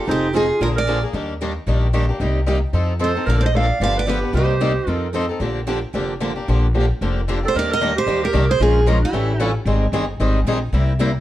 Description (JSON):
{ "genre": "acoustic string swing (jazz manouche)", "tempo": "225 BPM", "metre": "4/4", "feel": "swing 58% on 8ths", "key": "Bb major, Eb major from 7.5 s", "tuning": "A4 = 439 Hz", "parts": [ { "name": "picked steel-string acoustic guitar", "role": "melody", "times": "0.0-1.0, 3.0-5.1, 7.5-9.5 s", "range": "G4 to F5", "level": "-22 LUFS", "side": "right 2 dB", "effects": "plate reverb" }, { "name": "bright clarinet", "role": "second line", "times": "0.0-1.0, 3.0-5.1, 7.4-9.5 s", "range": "Eb4 to D5", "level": "-24 LUFS", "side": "right 4 dB", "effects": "none" }, { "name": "picked swing-style acoustic guitar", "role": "accompaniment", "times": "0.0-11.1 s", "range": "C3 to Bb4", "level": "-24 LUFS", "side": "left 3 dB", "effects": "none" }, { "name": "picked steel-string acoustic guitar", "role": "accompaniment", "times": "0.1-11.1 s", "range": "C3 to Bb4", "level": "-26 LUFS", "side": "right 3 dB", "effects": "none" }, { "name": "upright bass", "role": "bass", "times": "0.1-11.2 s", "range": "F1 to F2", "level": "-20 LUFS", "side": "equal", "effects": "none" } ], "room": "light reverb", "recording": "worn, warbling old tape, cassette tape, warbly pitch drift", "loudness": "-17 LUFS", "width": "side -14 dB against mid", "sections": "0.0-7.5 A section; 7.5-11.2 B section", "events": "none", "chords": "0.1 Fm7; 0.6 Bb7; 1.1 Ebmaj7; 2.2 Cm7; 2.7 F7; 3.3 Bbmaj7; 3.8 G7; 4.3 Cm7; 4.9 F7; 5.4 Bb6; 7.5 Ebmaj7; 8.6 Bbm7; 9.1 A7; 9.7 Abmaj7" }